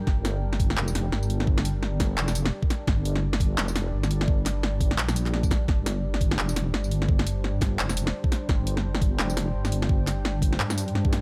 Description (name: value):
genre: half-time drum and bass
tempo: 171 BPM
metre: 4/4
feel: swing 58% on 16ths, half-time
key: G minor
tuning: A4 = 440 Hz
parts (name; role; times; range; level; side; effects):
- deep dark ambient pad; sustained chords; 0.0-11.2 s; G3 to G5; -37 LUFS; equal; chorus, built-in reverb, sidechain pumping
- deep soft wobble bass; bass; 0.0-11.2 s; F1 to G2; -29 LUFS; equal; chorus, tube saturation
- drum and bass drum kit; drums; 0.1-11.2 s; handclaps, hi-hat, snare drum, tambourine; -32 LUFS; equal; overdrive, small room ambience
- electronic kick drum; drums; 0.1-11.1 s; none; -27 LUFS; equal; overdrive, small room ambience
room: little or no reverb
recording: none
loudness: -25 LUFS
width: mono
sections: 0.0-11.2 A section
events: none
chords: 0.0 Gm